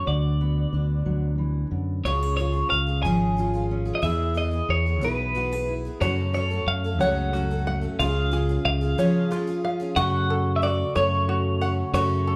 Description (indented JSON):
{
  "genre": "folk",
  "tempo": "61 BPM (dotted quarters)",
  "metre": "6/8",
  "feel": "straight",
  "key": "unclear",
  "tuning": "A4 = 441 Hz",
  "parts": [
    { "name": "twelve-string electric guitar", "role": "melody", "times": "0.0-12.4 s", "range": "B4 to G#5", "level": "-30 LUFS", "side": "equal", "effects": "tremolo" },
    { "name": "fingerpicked steel-string acoustic guitar", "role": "accompaniment", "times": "0.0-9.9 s", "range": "F#2 to A4", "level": "-31 LUFS", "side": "equal", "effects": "none" },
    { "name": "fingered electric bass", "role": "bass", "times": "0.0-12.4 s", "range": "G#1 to F#2", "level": "-28 LUFS", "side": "equal", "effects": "none" },
    { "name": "picked twelve-string acoustic guitar", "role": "accompaniment", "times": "2.1-12.4 s", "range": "F#2 to A4", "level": "-36 LUFS", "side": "equal", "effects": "none" },
    { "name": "open-back banjo", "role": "arpeggios", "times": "6.0-12.4 s", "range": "E#4 to F#5", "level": "-32 LUFS", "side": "equal", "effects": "none" },
    { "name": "glockenspiel with soft plastic mallets", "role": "second line", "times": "10.0-12.4 s", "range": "C#6", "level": "-35 LUFS", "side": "equal", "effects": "none" },
    { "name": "mellow tonewheel organ", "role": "sustained chords", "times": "10.0-12.4 s", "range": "C#3 to F#4", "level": "-35 LUFS", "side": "equal", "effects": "slow rotary speaker, chorus vibrato" }
  ],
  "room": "moderate large studio reverb, RT60 0.9 s",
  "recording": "band playing live in one room",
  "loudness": "-24 LUFS",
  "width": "mono",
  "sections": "0.0-2.0 A section; 2.0-10.0 B section; 10.0-12.4 C section",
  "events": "none",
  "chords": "0.0 Bm/D; 2.0 C#; 4.0 E; 6.0 F#m; 8.0 C#; 10.0 F#m"
}